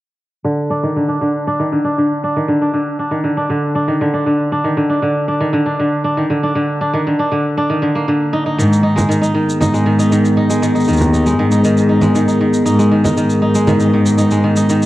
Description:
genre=folktronica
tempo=118 BPM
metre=4/4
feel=straight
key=unclear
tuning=A4 = 439 Hz
part: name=kora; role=arpeggios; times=0.4-14.9 s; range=D3 to Eb4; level=-15 LUFS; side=equal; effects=low-pass filter, cassette tape, analog delay
part: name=warbly tape-like pad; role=sustained chords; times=9.3-14.9 s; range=Cb4 to Bb4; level=-17 LUFS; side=equal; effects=chorus, built-in reverb, cassette tape
part: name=muted cello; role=bass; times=8.6-14.9 s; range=Eb2 to Ab2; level=-14 LUFS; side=equal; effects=tube saturation
part: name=shaker and congas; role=drums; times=8.6-14.9 s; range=none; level=-22 LUFS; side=right 1 dB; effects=cassette tape
room=light reverb, studio reverb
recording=home recording on cassette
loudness=-13 LUFS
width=side -16 dB against mid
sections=0.5-14.9 A section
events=filter sweep on kora 0.5-14.9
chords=0.5 Eb5; 8.6 Abmadd9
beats=| 0.46 0.97 1.48 1.99 | 2.49 3.00 3.51 4.02 | 4.53 5.04 5.54 6.05 | 6.56 7.07 7.58 8.09 | 8.60 9.10 9.61 10.12 | 10.63 11.14 11.65 12.15 | 12.66 13.17 13.68 14.19 | 14.70

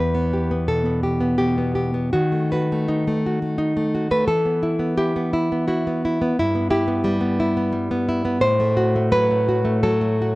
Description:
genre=romantic piece for solo classical guitar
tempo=86 BPM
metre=3/4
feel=rubato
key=E minor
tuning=A4 = 440 Hz
part: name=nylon-string guitar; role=solo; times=0.0-10.4 s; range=E2 to C5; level=-18 LUFS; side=equal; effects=none
room=light reverb, studio reverb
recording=dry, close 1970s-style studio recording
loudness=-18 LUFS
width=side -20 dB against mid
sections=0.0-10.4 A section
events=none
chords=0.0 Em; 2.1 B7/D#; 4.3 Em; 6.4 Em/G; 8.4 F#dim/A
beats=0.69 1.40 | 2.14 2.88 3.58 | 4.27 4.97 5.66 | 6.35 7.03 7.72 | 8.42 9.13 9.85

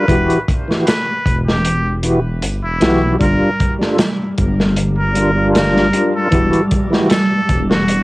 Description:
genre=trip hop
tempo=77 BPM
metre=4/4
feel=swing 53% on 16ths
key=unclear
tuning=A4 = 440 Hz
part: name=trumpet with straight mute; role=melody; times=0.0-8.0 s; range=E4 to B4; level=-21 LUFS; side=equal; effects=cassette tape, tape echo
part: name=tonewheel organ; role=accompaniment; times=0.0-7.1 s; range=E3 to Bb4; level=-17 LUFS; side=equal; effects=overdrive, chorus vibrato, slow rotary speaker, tremolo, vintage 12-bit sampler grit, cassette tape
part: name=dark detuned saw bass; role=bass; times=0.1-8.0 s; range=E1 to B1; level=-18 LUFS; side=equal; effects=none
part: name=crunchy breakbeat drum kit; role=drums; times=0.1-8.0 s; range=hi-hat, kick drum, snare drum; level=-17 LUFS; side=equal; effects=none
part: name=tube shaker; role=percussion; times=0.9-7.3 s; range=none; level=-39 LUFS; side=right 6 dB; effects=none
part: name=dark analog pad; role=sustained chords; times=3.2-8.0 s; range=G3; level=-21 LUFS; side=equal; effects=wide subtle chorus, cassette tape
part: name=flickering grainy texture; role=texture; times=3.7-8.0 s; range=G3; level=-25 LUFS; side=equal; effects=none
room=small room ambience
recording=home recording on cassette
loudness=-13 LUFS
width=side -20 dB against mid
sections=0.0-8.0 A section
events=none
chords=0.1 Emadd9; 3.2 Gm7; 6.3 Emadd9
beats=| 0.09 0.87 1.65 2.43 | 3.21 3.99 4.77 5.55 | 6.33 7.11 7.88

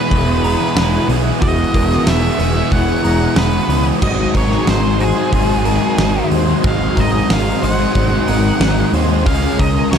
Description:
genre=rock, shoegaze and dream pop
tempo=92 BPM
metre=4/4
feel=straight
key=Ab mixolydian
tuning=A4 = 441 Hz
part: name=octave-fuzz lead guitar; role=melody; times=0.0-10.0 s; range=Ab4 to F#5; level=-22 LUFS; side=equal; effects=distortion, tape echo
part: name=ensemble organ-string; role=sustained chords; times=0.0-10.0 s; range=E4 to D#6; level=-25 LUFS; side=equal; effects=ensemble chorus
part: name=electric guitar through a small old amp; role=arpeggios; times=0.0-10.0 s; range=F#4 to Bb5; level=-26 LUFS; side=left 2 dB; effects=ensemble chorus, tape echo
part: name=crunchy overdriven guitar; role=riff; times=0.0-10.0 s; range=Ab2 to Gb4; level=-22 LUFS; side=left 1 dB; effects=phaser
part: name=overdriven semi-hollow guitar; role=riff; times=0.0-10.0 s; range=E2 to G#4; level=-22 LUFS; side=right 11 dB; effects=reverse reverb
part: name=thick fuzz guitar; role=riff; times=0.0-10.0 s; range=E2 to Db4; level=-22 LUFS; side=left 10 dB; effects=distortion, wide subtle chorus
part: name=growling picked electric bass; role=bass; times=0.1-10.0 s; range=E1 to Eb2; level=-18 LUFS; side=equal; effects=overdrive
part: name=huge arena drum kit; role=drums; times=0.1-10.0 s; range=crash cymbal, hi-hat, kick drum, snare drum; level=-20 LUFS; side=equal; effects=none
room=studio ambience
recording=dark, warm production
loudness=-12 LUFS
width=side -7 dB against mid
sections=0.0-10.0 A section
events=none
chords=0.0 Emaj9; 4.0 Ab7; 9.3 Db6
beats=0.11 0.76 | 1.41 2.06 2.72 3.37 | 4.03 4.68 5.33 5.99 | 6.64 7.30 7.96 8.61 | 9.27 9.93

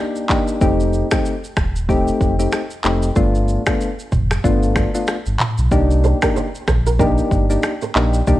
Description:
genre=afrobeats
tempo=94 BPM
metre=4/4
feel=swing 58% on 16ths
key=C dorian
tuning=A4 = 440 Hz
part: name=soft electric-piano-like synth keys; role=accompaniment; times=0.0-8.4 s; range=A3 to G4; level=-19 LUFS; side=left 2 dB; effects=chorus
part: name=afro-pop drum kit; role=drums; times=0.2-8.4 s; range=finger snaps, handclaps, kick drum, rim click, shaker, toms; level=-20 LUFS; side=equal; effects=none
part: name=sub bass with octave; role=bass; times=0.6-8.4 s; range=Eb1 to C2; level=-19 LUFS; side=equal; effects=none
part: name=flamenco guitar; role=riff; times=6.0-8.1 s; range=G4 to Eb5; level=-24 LUFS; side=right 5 dB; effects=digital delay
room=little or no reverb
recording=worn, warbling old tape, cassette tape, warbly pitch drift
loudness=-15 LUFS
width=side -15 dB against mid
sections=0.0-8.4 A section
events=none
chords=0.0 Cm7 (rootless); 0.6 F9; 3.2 G7; 5.7 Cm7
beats=| 0.61 1.25 1.89 2.53 | 3.17 3.80 4.44 5.08 | 5.72 6.36 7.00 7.63 | 8.27

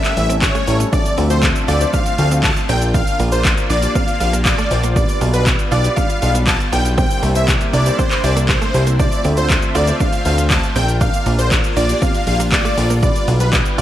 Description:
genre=dance-pop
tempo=119 BPM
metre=4/4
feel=straight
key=D minor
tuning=A4 = 439 Hz
part: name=supersaw chords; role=melody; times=0.0-13.8 s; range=B4 to A5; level=-21 LUFS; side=equal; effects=sidechain pumping, slapback echo
part: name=warm concert grand piano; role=accompaniment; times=0.0-13.8 s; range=F3 to D5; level=-26 LUFS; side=left 5 dB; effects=sidechain pumping, slapback echo
part: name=sweeping resonant pad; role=sustained chords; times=0.0-13.8 s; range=C3 to E5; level=-26 LUFS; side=right 1 dB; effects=chorus, sidechain pumping
part: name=punchy analog drum machine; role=drums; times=0.0-13.8 s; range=handclaps, hi-hat, kick drum, shaker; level=-18 LUFS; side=equal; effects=none
part: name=direct-recorded clean electric guitar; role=riff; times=0.2-13.8 s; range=A3 to F4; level=-28 LUFS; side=right 6 dB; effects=analog chorus, slapback echo
part: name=fat analog bass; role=bass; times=0.2-13.8 s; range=A1 to D2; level=-17 LUFS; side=equal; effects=sidechain pumping
room=light reverb, digital ambience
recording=none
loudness=-13 LUFS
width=side -12 dB against mid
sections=0.9-13.8 A section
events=drop 0.9-13.8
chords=0.0 A7; 0.9 Dm7; 2.7 Bb; 5.0 G7; 7.0 C7; 9.0 Dm7; 10.8 Bb; 13.0 G7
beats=0.42 | 0.93 1.43 1.94 2.44 | 2.94 3.45 3.95 4.46 | 4.96 5.46 5.97 6.47 | 6.98 7.48 7.99 8.49 | 8.99 9.50 10.00 10.51 | 11.01 11.52 12.02 12.52 | 13.03 13.53

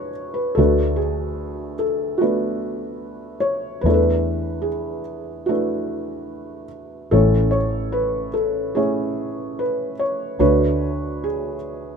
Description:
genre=acoustic folk-pop ballad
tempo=73 BPM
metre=4/4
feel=straight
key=A major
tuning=A4 = 440 Hz
part: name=felt-muted upright piano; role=melody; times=0.0-12.0 s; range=A1 to C#5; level=-21 LUFS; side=right 1 dB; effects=none
part: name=vintage muted fingered electric bass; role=bass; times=0.0-12.0 s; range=E1 to E2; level=-22 LUFS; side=left 1 dB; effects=none
room=little or no reverb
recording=minimal, uncompressed stereo recording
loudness=-19 LUFS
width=side -6 dB against mid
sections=0.0-12.0 A section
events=none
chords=0.0 E7; 0.6 D6; 3.9 E7sus4; 7.1 Amaj7; 10.4 Dmaj7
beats=| 0.58 1.40 2.22 3.04 | 3.86 4.68 5.50 6.32 | 7.13 7.95 8.77 9.59 | 10.40 11.22

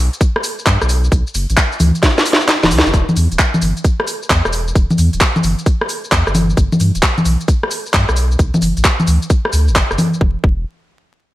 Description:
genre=UK garage, two-step garage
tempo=132 BPM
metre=4/4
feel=swing 66% on 16ths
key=E minor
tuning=A4 = 439 Hz
part: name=soft dub sub bass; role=bass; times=0.0-10.6 s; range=D1 to G2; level=-16 LUFS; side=equal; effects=tube saturation
part: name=garage drum kit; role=drums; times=0.1-10.2 s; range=congas, handclaps, hi-hat, rim click, shaker, snare drum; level=-15 LUFS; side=equal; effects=none
part: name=electronic kick drum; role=drums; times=0.2-10.6 s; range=none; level=-14 LUFS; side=equal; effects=none
room=little or no reverb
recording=vinyl crackle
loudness=-12 LUFS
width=side -16 dB against mid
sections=0.0-2.9 A section; 2.9-10.2 B section; 10.2-11.3 C section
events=drum fill 2.0-2.9; kick drops out 2.5-2.9; band accent 2.8; filter sweep on sub bass 2.9-10.2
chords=none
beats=0.21 0.66 | 1.12 1.57 2.03 2.48 | 2.94 3.39 3.85 4.30 | 4.75 5.21 5.66 6.12 | 6.57 7.03 7.48 7.94 | 8.39 8.85 9.30 9.76 | 10.21

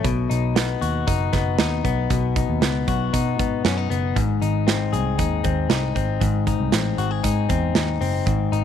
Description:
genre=jangly indie pop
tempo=117 BPM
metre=4/4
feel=straight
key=unclear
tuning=A4 = 440 Hz
part: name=direct-recorded clean electric guitar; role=arpeggios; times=0.0-8.6 s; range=G#2 to G#4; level=-24 LUFS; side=left 11 dB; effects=none
part: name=vintage muted picked electric bass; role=bass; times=0.0-8.6 s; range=F#1 to B2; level=-23 LUFS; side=right 1 dB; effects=none
part: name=modern studio drum kit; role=drums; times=0.0-8.6 s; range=hi-hat, kick drum, snare drum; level=-24 LUFS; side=right 4 dB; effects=none
room=studio ambience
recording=1960s-style stereo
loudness=-19 LUFS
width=side -9 dB against mid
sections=0.0-8.6 A section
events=none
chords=0.0 B; 4.2 G#7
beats=| 0.05 0.56 1.08 1.59 | 2.10 2.62 3.13 3.65 | 4.16 4.67 5.19 5.70 | 6.22 6.73 7.24 7.76 | 8.27

